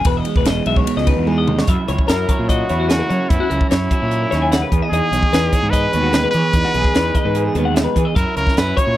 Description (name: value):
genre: math rock and midwest emo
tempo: 148 BPM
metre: 4/4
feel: straight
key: unclear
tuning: A4 = 437 Hz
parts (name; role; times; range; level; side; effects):
- electric guitar through a small old amp; accompaniment; 0.0-9.0 s; E2 to G#4; -22 LUFS; right 6 dB; none
- twelve-string electric guitar; arpeggios; 0.0-9.0 s; F#4 to G#5; -23 LUFS; left 7 dB; none
- fuzz fingered electric bass; bass; 0.0-9.0 s; E1 to F#3; -21 LUFS; equal; overdrive
- crisp fusion drum kit; drums; 0.0-8.9 s; hi-hat, kick drum, ride cymbal, snare drum, toms; -18 LUFS; equal; none
- brilliant trumpet; melody; 2.1-9.0 s; E4 to C#5; -20 LUFS; equal; slapback echo
room: little or no reverb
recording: dry, close 1970s-style studio recording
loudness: -14 LUFS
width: side -14 dB against mid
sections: 0.0-1.7 A section; 1.7-9.0 B section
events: drum fill 1.3-1.7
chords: 0.1 Emaj7; 1.7 F#7; 4.7 Emaj7; 8.2 F#7